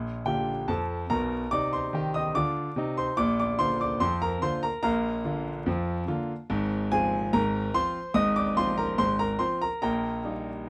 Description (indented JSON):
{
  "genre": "ragtime piano",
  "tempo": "72 BPM",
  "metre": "2/4",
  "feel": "straight",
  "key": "Bb major",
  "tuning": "A4 = 439 Hz",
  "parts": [
    { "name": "clear concert grand piano", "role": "solo", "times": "0.0-10.7 s", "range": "Ab1 to Eb6", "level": "-28 LUFS", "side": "equal", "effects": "none" }
  ],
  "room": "light reverb",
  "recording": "close, detailed microphones, vinyl crackle",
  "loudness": "-28 LUFS",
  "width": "mono",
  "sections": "0.0-10.7 A section",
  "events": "none",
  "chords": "0.0 Bb; 1.5 F5/C; 3.2 Bb; 6.5 Fm/Ab; 9.8 Eb/Bb"
}